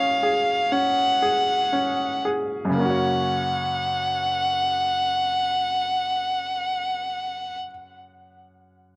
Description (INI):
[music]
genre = pop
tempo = 56-62 BPM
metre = 4/4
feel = straight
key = F# major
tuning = A4 = 441 Hz
[part]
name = rich violin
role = melody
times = 0.0-7.6 s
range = E#5 to F#5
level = -25 LUFS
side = equal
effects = cassette tape
[part]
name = bright grand piano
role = accompaniment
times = 0.0-9.0 s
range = F#2 to C#5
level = -29 LUFS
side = equal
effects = cassette tape
[sound]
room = moderate small room reverb, RT60 0.6 s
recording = home recording on cassette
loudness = -24 LUFS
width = mono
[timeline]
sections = 0.0-2.8 A section; 2.8-7.1 B section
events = slowing down 0.0-2.8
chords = 0.0 C#sus4; 2.8 F#